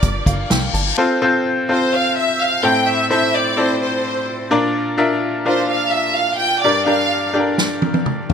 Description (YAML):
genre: piano-driven pop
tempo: 127 BPM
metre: 4/4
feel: straight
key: unclear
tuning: A4 = 440 Hz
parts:
  - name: clear studio violin section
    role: melody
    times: 0.0-7.3 s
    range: C5 to G5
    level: -18 LUFS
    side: right 1 dB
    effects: none
  - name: bright upright piano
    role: accompaniment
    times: 0.0-8.3 s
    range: G2 to A5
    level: -18 LUFS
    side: left 1 dB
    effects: none
  - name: plucky analog bass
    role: bass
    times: 0.0-0.9 s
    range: G1 to C2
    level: -21 LUFS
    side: equal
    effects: none
  - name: unplugged drum kit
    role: drums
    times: 0.0-0.9, 7.6-8.3 s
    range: hi-hat, kick drum, snare drum, toms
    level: -18 LUFS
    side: equal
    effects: none
  - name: reverse cymbal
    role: sound effects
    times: 0.3-1.0 s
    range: none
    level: -25 LUFS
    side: left 6 dB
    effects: none
room: moderate plate reverb, RT60 2.1 s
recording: bright 1980s-style digital production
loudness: -15 LUFS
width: side -7 dB against mid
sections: 1.0-8.3 A section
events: upright piano fill 0.0-1.0; reverse cymbal 0.3-1.0; drum fill 7.6-8.3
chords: 0.0 Gm7; 1.0 F; 2.6 Am; 4.5 Bb; 6.6 Gm